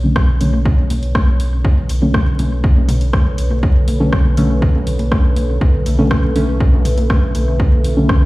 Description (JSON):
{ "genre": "dub techno", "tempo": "121 BPM", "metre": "4/4", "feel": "straight", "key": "B minor", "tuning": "A4 = 441 Hz", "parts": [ { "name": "dark analog pad", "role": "sustained chords", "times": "0.0-8.3 s", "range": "D3 to E5", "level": "-25 LUFS", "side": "equal", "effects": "chorus, phaser, sidechain pumping" }, { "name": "deep mellow chord stab", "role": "stabs", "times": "0.0-8.1 s", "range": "D3 to C#4", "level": "-20 LUFS", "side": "equal", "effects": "chorus, phaser, sidechain pumping, dub echo" }, { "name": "soft dub sub bass", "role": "bass", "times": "0.0-8.3 s", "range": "B1", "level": "-18 LUFS", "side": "equal", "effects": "sidechain pumping" }, { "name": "deep house drum kit", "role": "drums", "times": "0.2-8.2 s", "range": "hi-hat, rim click", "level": "-26 LUFS", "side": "equal", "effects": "small room ambience, dub echo" }, { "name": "electronic kick drum", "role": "drums", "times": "0.2-8.2 s", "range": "none", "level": "-14 LUFS", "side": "equal", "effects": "small room ambience" }, { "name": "electronic congas and toms", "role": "percussion", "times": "0.2-8.2 s", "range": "none", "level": "-26 LUFS", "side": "left 1 dB", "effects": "overdrive, sidechain pumping on perc, small room ambience, sidechain pumping on toms, dub echo" } ], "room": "light reverb, digital ambience", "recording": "played on a big sound system in a bare room, large studio reverb, vinyl crackle", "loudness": "-12 LUFS", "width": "side -19 dB against mid", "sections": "0.0-8.3 A section", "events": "none", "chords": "0.0 Bm9", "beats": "0.16 0.66 1.15 | 1.65 2.14 2.64 3.13 | 3.63 4.13 4.62 5.12 | 5.61 6.11 6.61 7.10 | 7.60 8.09" }